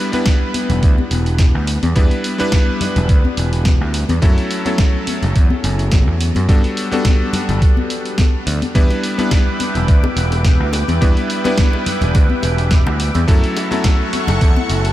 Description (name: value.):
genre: nu-disco, nu disco.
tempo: 106 BPM.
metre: 4/4.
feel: swing 54% on 16ths.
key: E dorian.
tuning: A4 = 440 Hz.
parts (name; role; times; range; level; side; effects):
bright electric grand piano; accompaniment; 0.0-14.9 s; F#3 to B4; -21 LUFS; left 1 dB; diffuse ambient delay.
dusty soul sampler-style drum kit; drums; 0.1-14.9 s; hi-hat, snare drum; -25 LUFS; equal; studio ambience.
congas and bongos; percussion; 0.1-14.7 s; none; -25 LUFS; left 5 dB; none.
electronic kick drum; drums; 0.3-14.5 s; none; -13 LUFS; equal; studio ambience.
overdriven picked electric bass; bass; 0.7-14.9 s; E1 to G2; -17 LUFS; equal; none.
lush unison pad; sustained chords; 9.1-14.9 s; A4 to D6; -25 LUFS; right 1 dB; chorus, phaser, sidechain pumping.
room: light reverb.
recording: none.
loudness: -13 LUFS.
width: side -14 dB against mid.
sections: 0.0-14.9 A section.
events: none.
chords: 0.0 Em7; 4.2 F#m7; 6.5 Gmaj9; 8.8 Em7; 13.3 F#m7.